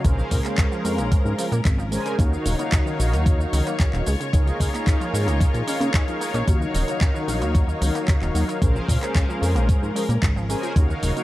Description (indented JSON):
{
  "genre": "nu-disco, nu disco",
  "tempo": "112 BPM",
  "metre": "4/4",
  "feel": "straight",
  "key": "Eb dorian",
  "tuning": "A4 = 440 Hz",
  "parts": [
    { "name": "mellow synth brass", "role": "accompaniment", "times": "0.0-11.2 s", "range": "Db4 to Ab5", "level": "-28 LUFS", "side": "left 1 dB", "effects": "chorus, cassette tape, sidechain pumping, analog delay" },
    { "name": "rich symphonic string section", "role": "sustained chords", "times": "0.0-11.2 s", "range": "Gb3 to Db5", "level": "-31 LUFS", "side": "left 1 dB", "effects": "sidechain pumping" },
    { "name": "wide unison pluck", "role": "arpeggios", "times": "0.0-11.2 s", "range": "Db3 to F4", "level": "-31 LUFS", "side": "right 2 dB", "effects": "cassette tape, sidechain pumping, analog delay" },
    { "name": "chorused synth bass", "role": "bass", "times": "0.0-11.1 s", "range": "Eb1 to Db3", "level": "-23 LUFS", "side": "equal", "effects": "none" },
    { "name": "electronic kick drum", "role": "drums", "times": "0.0-10.9 s", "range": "none", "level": "-19 LUFS", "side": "equal", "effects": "none" },
    { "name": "house drum kit", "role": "drums", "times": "0.0-11.2 s", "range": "cabasa, handclaps, hi-hat", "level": "-31 LUFS", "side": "equal", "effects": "none" }
  ],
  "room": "digital ambience",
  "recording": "none",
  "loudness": "-19 LUFS",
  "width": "side -16 dB against mid",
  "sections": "0.0-11.2 A section",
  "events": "none",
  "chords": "0.0 Bbm7; 2.2 Ebm7; 4.1 Db6; 6.5 Ebm7; 8.6 Bbm7"
}